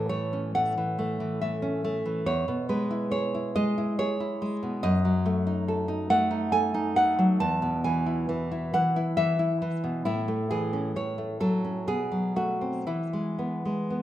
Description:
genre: romantic piece for solo classical guitar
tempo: 57-72 BPM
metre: 3/4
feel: rubato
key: E major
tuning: A4 = 440 Hz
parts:
  - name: nylon-string guitar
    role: solo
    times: 0.0-14.0 s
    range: E2 to A5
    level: -25 LUFS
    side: equal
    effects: none
room: moderate recital hall reverb, RT60 1.8 s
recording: minimal, uncompressed stereo recording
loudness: -25 LUFS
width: side -13 dB against mid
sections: 0.0-14.0 A section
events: none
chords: 0.0 A; 2.3 E; 4.8 D#dim/F#; 7.4 E; 10.1 A; 10.9 F#m/A; 11.9 B5; 12.9 E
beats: 0.57 1.43 | 2.27 3.12 3.99 | 4.83 5.68 6.54 | 7.41 8.30 9.18 | 10.05 10.94 11.87 | 12.87 13.90

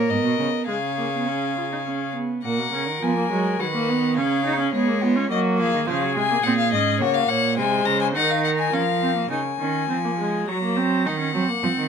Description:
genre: classical, baroque-style fugue for string quartet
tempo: 104 BPM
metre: 3/4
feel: straight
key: F# major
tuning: A4 = 439 Hz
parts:
  - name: rich violin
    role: melody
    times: 0.0-11.9 s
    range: C#5 to A#5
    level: -25 LUFS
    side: left 8 dB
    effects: none
  - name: dark violin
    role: second line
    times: 0.0-9.3 s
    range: E#4 to C#5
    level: -27 LUFS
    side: left 2 dB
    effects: none
  - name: rich viola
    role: accompaniment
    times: 0.0-11.9 s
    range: E#3 to E#4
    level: -25 LUFS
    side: right 2 dB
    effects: none
  - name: rich cello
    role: bass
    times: 0.0-11.9 s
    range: G#2 to G#3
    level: -26 LUFS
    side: right 5 dB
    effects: none
room: light reverb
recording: minimal, uncompressed stereo recording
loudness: -20 LUFS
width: side -7 dB against mid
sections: 0.0-2.4 A section; 2.4-9.3 B section; 9.3-11.9 A section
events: none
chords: 0.0 G#m (rootless); 0.7 C#; 2.4 F#/A#; 3.6 B/D#; 4.2 C#7; 5.3 F#; 5.9 C#; 7.0 F#/C#; 7.6 G#/B#; 8.7 N.C.; 9.3 C#; 10.5 F#; 11.1 Cdim/Eb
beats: 0.10 | 0.68 1.27 1.86 | 2.44 3.02 3.60 | 4.17 4.74 5.31 | 5.88 6.44 7.01 | 7.58 8.16 8.73 | 9.31 9.90 10.48 | 11.06 11.63

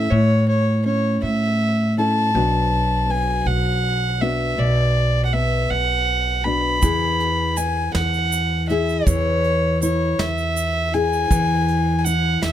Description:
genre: acoustic folk duo or small band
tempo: 54 BPM (dotted quarters)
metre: 6/8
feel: straight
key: unclear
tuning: A4 = 439 Hz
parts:
  - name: warm fiddle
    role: melody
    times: 0.0-12.5 s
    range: C#5 to B5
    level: -21 LUFS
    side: equal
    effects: none
  - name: nylon-string guitar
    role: accompaniment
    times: 0.0-12.5 s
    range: A2 to A4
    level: -24 LUFS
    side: left 3 dB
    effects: none
  - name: upright bass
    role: bass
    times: 0.0-12.5 s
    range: B1 to A2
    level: -22 LUFS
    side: right 1 dB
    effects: none
  - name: soft brush drum kit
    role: drums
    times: 6.8-12.5 s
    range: hi-hat, kick drum, snare drum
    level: -23 LUFS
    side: right 1 dB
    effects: none
  - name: tube shaker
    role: percussion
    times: 6.8-12.2 s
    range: none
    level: -30 LUFS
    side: right 10 dB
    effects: none
room: little or no reverb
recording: close, detailed microphones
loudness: -17 LUFS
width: side -11 dB against mid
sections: 0.0-12.5 A section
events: none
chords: 0.0 A; 2.3 Bm; 6.8 E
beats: | 0.11 1.23 | 2.35 3.47 | 4.59 5.71 | 6.83 7.95 | 9.06 10.18 | 11.30 12.42

